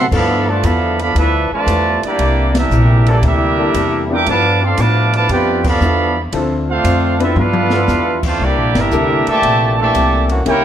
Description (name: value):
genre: jazz, big band swing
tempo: 116 BPM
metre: 4/4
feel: swing 69% on 8ths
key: unclear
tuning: A4 = 440 Hz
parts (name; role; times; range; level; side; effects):
- warm trumpet section; melody; 0.0-10.6 s; A3 to D6; -16 LUFS; right 2 dB; none
- bright trombone section; second line; 0.0-10.6 s; Bb2 to G4; -20 LUFS; right 2 dB; none
- upright bass; bass; 0.0-10.6 s; G1 to C3; -17 LUFS; equal; none
- picked acoustic archtop guitar; accompaniment; 0.1-10.6 s; G2 to A4; -24 LUFS; left 5 dB; none
- warm baby grand piano; accompaniment; 0.1-10.6 s; A3 to B4; -22 LUFS; left 3 dB; none
- clear trombone section; sustained chords; 0.1-10.4 s; Bb2 to A4; -24 LUFS; equal; none
- open jazz drum kit; drums; 0.1-10.6 s; crash cymbal, hi-hat, kick drum, ride cymbal, snare drum, toms; -24 LUFS; equal; none
room: moderate large studio reverb, RT60 1.1 s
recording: none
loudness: -12 LUFS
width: side -10 dB against mid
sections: 0.1-10.6 A section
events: band accent 2.4, 5.5, 8.7; drum fill 7.4-7.9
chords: 0.1 G13; 2.2 C13; 4.3 G13; 6.3 Dm7; 7.4 G13; 8.4 C13